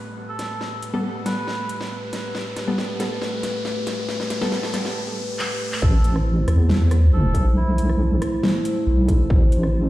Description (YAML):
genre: deep dubstep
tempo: 138 BPM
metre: 4/4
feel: half-time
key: A minor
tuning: A4 = 440 Hz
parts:
  - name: dark analog pad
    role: sustained chords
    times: 0.0-9.9 s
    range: A3 to C5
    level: -27 LUFS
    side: equal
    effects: chorus
  - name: riser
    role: sound effects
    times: 0.0-5.8 s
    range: none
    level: -34 LUFS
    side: left 1 dB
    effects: none
  - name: melodica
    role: melody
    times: 0.3-1.7, 5.8-7.9 s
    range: E4 to B4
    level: -34 LUFS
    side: right 1 dB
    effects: low-pass filter, dub echo
  - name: dubstep drum kit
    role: drums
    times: 0.4-9.7 s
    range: handclaps, hi-hat, rim click, snare drum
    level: -29 LUFS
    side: equal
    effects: high-pass filter on hats, high-pass filter on snare
  - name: filtered dub chord stab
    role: stabs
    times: 0.9-4.8 s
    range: G3 to A4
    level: -29 LUFS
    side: left 2 dB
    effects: chorus, dub echo
  - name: deep soft wobble bass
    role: bass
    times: 5.8-9.9 s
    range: A1 to E2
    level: -18 LUFS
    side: equal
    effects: chorus
  - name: electronic kick drum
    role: drums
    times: 5.8-9.4 s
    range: none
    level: -18 LUFS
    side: equal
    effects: distortion
room: moderate lush hall reverb, RT60 1.8 s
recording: played on a big sound system in a bare room, stone room reverb, faint mains hum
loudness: -19 LUFS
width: side -16 dB against mid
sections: 0.0-5.8 A section; 5.8-9.9 B section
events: build-up 0.0-5.8; drum fill 0.0-5.0, 5.4-5.8; riser 0.0-5.8; filter sweep on analog synth pad 0.0-5.8; drop 5.8-9.9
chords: 0.0 Gadd9; 5.8 Am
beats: 0.17 | 0.61 1.04 1.48 1.91 | 2.35 2.78 3.21 3.65 | 4.08 4.52 4.95 5.39 | 5.82 6.26 6.69 7.13 | 7.56 8.00 8.43 8.87 | 9.30 9.74